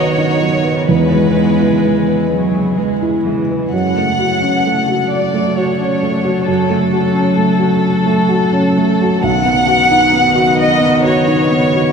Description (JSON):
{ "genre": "neoclassical piano and strings", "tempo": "43 BPM (dotted quarters)", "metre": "6/8", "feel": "rubato", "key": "F# minor", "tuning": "A4 = 439 Hz", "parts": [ { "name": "warm chamber violin section", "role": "melody", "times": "0.0-11.9 s", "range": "A4 to F#5", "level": "-16 LUFS", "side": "left 1 dB", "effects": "none" }, { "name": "rich cello", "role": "second line", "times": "0.0-11.9 s", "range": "D#3 to G#3", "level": "-18 LUFS", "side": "right 1 dB", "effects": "none" }, { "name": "felt-muted upright piano", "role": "accompaniment", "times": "0.0-11.9 s", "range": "B1 to B4", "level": "-15 LUFS", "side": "right 1 dB", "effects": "none" }, { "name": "warm chamber string section", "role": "sustained chords", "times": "0.0-11.9 s", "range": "C#3 to B4", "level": "-25 LUFS", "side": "equal", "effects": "none" } ], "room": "wet cathedral reverb, RT60 6.4 s", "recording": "recorded in a church or concert hall", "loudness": "-11 LUFS", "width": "side -6 dB against mid", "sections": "0.0-11.9 A section", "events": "none", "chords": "0.0 B; 0.9 E; 3.7 F#m; 9.2 B" }